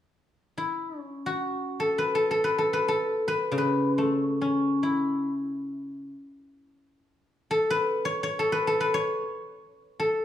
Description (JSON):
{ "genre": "chinese traditional, Chinese solo plucked strings", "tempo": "free time", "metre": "none", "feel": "none", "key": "A gong mode", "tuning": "A4 = 440 Hz", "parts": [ { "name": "guzheng", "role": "solo", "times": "0.6-10.2 s", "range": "C#3 to C#5", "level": "-24 LUFS", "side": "left 1 dB", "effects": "none" } ], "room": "wet recital hall reverb, RT60 1.4 s", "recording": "small room ambience", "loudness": "-24 LUFS", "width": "side -11 dB against mid", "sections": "0.0-10.2 A section", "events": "none", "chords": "none" }